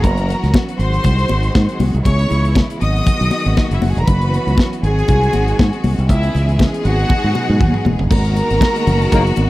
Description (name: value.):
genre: disco.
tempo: 119 BPM.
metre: 4/4.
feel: swing 56% on 16ths.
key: G# minor.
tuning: A4 = 440 Hz.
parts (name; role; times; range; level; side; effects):
rich studio string section; second line; 0.0-9.5 s; E4 to D#6; -21 LUFS; equal; slapback echo.
clear studio string section; sustained chords; 0.0-9.5 s; C#3 to G#4; -22 LUFS; right 1 dB; none.
fingered electric bass; bass; 0.0-9.5 s; E1 to G#2; -16 LUFS; equal; none.
modern studio drum kit; drums; 0.0-9.5 s; crash cymbal, hi-hat, kick drum, snare drum, toms; -16 LUFS; equal; none.
congas; percussion; 0.0-9.5 s; none; -22 LUFS; left 4 dB; none.
cowbell; percussion; 8.1-9.3 s; none; -28 LUFS; right 10 dB; none.
mellow horn section; stabs; 9.1-9.2 s; F#3 to A#4; -19 LUFS; left 7 dB; none.
room: little or no reverb.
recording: dry, close 1970s-style studio recording.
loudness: -13 LUFS.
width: side -17 dB against mid.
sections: 0.0-8.1 A section; 8.1-9.5 B section.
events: drum fill 7.1-8.1.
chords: 0.0 F#7sus4; 0.8 G#7; 2.1 C#m7; 2.8 G#m7; 4.1 F#7sus4; 4.8 G#7; 6.1 C#m7; 6.8 G#m7; 8.1 G#m9.